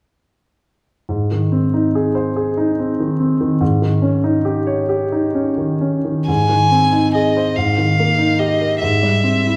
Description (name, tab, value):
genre	classical, romantic duo for violin and grand piano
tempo	47 BPM (dotted quarters)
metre	6/8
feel	rubato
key	Ab major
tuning	A4 = 440 Hz
part	warm concert grand piano	accompaniment	1.1-9.6 s	Ab2 to Db5	-18 LUFS	equal	none
part	rich violin	melody	6.3-9.6 s	Eb5 to Ab5	-19 LUFS	equal	none
room	wet recital hall reverb, RT60 1.5 s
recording	none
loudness	-17 LUFS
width	mono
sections	1.1-6.3 A section; 6.3-9.6 B section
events	none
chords	1.1 Ab; 3.6 Eb7/Ab; 6.3 Ab; 7.6 Eb/Ab; 8.8 C/Ab